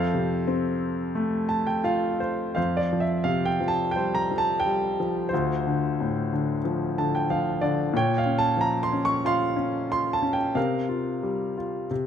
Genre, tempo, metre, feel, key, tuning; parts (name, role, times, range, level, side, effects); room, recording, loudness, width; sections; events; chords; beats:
classical, lyrical solo piano; 90 BPM; 4/4; rubato; F major; A4 = 440 Hz
clear grand piano; solo; 0.0-12.1 s; D2 to Db6; -23 LUFS; equal
light reverb; close, detailed microphones; -23 LUFS; side -8 dB against mid
0.0-2.6 A section; 2.6-12.1 B section
grand piano fill 1.2-2.6, 6.6-7.9
0.0 F; 2.6 Fsus2; 5.3 Dm7; 7.9 Bbmadd9; 10.6 C7sus4
0.48 1.15 1.86 | 2.57 3.26 3.96 4.64 | 5.32 5.98 6.63 7.29 | 7.94 8.60 9.25 9.91 | 10.57 11.23 11.91